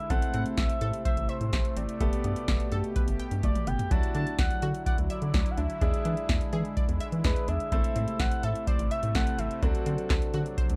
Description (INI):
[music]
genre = synth-pop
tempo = 126 BPM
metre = 4/4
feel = straight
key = A dorian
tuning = A4 = 442 Hz
[part]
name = expressive synth lead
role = melody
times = 0.0-10.8 s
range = A4 to A5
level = -37 LUFS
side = equal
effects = chorus, delay, plate reverb
[part]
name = clear concert grand piano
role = accompaniment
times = 0.0-10.8 s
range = B3 to A4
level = -41 LUFS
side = equal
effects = plate reverb
[part]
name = sweeping resonant pad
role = sustained chords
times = 0.0-10.8 s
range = B2 to G4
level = -39 LUFS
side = equal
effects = chorus, plate reverb
[part]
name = analog pluck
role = arpeggios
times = 0.1-10.7 s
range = F#3 to G5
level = -42 LUFS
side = equal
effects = chorus, delay, plate reverb
[part]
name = rubbery square bass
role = bass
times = 0.1-10.8 s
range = G1 to E3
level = -33 LUFS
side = equal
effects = none
[part]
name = electro analog drum machine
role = drums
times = 0.1-10.8 s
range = handclaps, hi-hat, kick drum, snare drum, toms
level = -31 LUFS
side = equal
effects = none
[sound]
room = light reverb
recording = dark, warm production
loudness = -28 LUFS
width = mono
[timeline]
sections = 0.0-10.8 A section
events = drum fill 3.4-3.9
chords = 0.1 Am; 2.0 Gadd9; 3.9 Dadd9; 5.8 E7; 7.7 Am; 9.6 D7